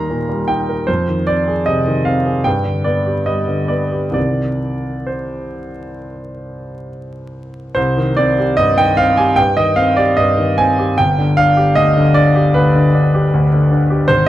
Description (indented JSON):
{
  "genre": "classical, romantic character piece for solo piano",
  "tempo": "64-81 BPM",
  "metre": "4/4",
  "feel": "rubato",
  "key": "C minor",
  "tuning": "A4 = 441 Hz",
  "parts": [
    { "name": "clear grand piano", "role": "solo", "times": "0.0-14.3 s", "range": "G1 to C6", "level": "-13 LUFS", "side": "equal", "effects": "none" }
  ],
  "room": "moderate recital hall reverb, RT60 1.5 s",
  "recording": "close, detailed microphones, vinyl crackle",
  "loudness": "-12 LUFS",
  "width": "side -13 dB against mid",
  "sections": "0.0-7.8 A section; 7.8-14.3 B section",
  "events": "none",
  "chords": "0.0 Eb; 0.9 Fm7; 2.5 G; 4.2 Cm; 11.0 G"
}